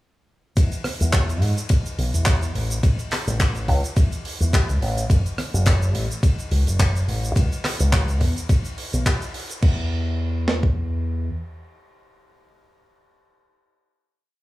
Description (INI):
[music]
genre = nu-disco, nu disco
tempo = 106 BPM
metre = 4/4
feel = swing 55% on 16ths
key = unclear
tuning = A4 = 439 Hz
[part]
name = fingered electric bass with an envelope filter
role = bass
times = 0.6-11.3 s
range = F#1 to G#2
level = -21 LUFS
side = equal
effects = sidechain pumping
[part]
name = clean 12-bit digital drum machine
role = drums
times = 0.6-10.7 s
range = kick drum, snare drum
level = -18 LUFS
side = equal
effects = small room ambience
[part]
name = damped 70s drum kit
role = drums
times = 0.6-9.7 s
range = crash cymbal, handclaps, hi-hat, ride cymbal, rim click, shaker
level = -27 LUFS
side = equal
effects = small room ambience
[sound]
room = little or no reverb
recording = small room reverb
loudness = -19 LUFS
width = side -18 dB against mid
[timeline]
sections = 0.6-9.6 drop; 9.6-11.9 final note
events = drop 0.6-9.6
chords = none